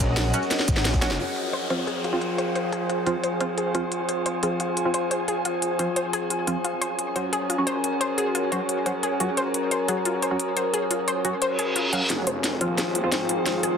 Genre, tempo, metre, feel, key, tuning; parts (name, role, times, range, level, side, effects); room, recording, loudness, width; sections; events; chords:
dark technical drum and bass; 176 BPM; 4/4; straight; F phrygian; A4 = 442 Hz
metallic inharmonic drone; sustained chords; 0.0-13.8 s; F3 to Bb4; -29 LUFS; left 1 dB; chorus, built-in reverb, sidechain pumping
snarling distorted saw bass; bass; 0.0-1.2, 12.1-13.8 s; Eb1 to Bb1; -28 LUFS; equal; distortion, tube saturation, sidechain pumping, high-pass filter
crunchy breakbeat drum kit; drums; 0.0-1.2 s; ride cymbal, snare drum; -41 LUFS; equal
drum and bass drum kit; drums; 0.0-13.7 s; hi-hat, ride cymbal, shaker, snare drum; -27 LUFS; equal; low-pass filter on hats, low-pass filter on perc, low-pass filter on cymbals, low-pass filter on snare
electronic kick drum; drums; 0.0-1.0 s; -24 LUFS; equal
ethereal airy pad; texture; 0.0-13.8 s; F4 to Ab5; -29 LUFS; equal; ensemble chorus, built-in reverb, sidechain pumping
filtered dub chord stab; stabs; 0.3-13.1 s; F3 to Gb4; -29 LUFS; right 1 dB; wide subtle chorus, tape echo
analog pluck; arpeggios; 1.2-13.7 s; F4 to F5; -30 LUFS; left 2 dB; chorus, cassette tape, sidechain pumping, tape echo
downlifter, reverse cymbal and riser; sound effects; 1.2-3.9, 11.5-13.8 s; -31 LUFS; equal
moderate plate reverb, RT60 1.3 s; dense, heavily limited modern master; -22 LUFS; side -7 dB against mid
0.0-1.2 A section; 1.2-12.1 B section; 12.1-13.8 C section
drop 0.0-1.2; drum fill 0.5-1.2, 12.1-13.8; band accent 1.1; filter sweep on synth arpeggio sound 1.2-12.1; reverse cymbal 11.5-12.1; build-up 12.1-13.8
0.0 Gbadd9; 1.2 Fm; 6.6 Gbadd9; 12.1 Fm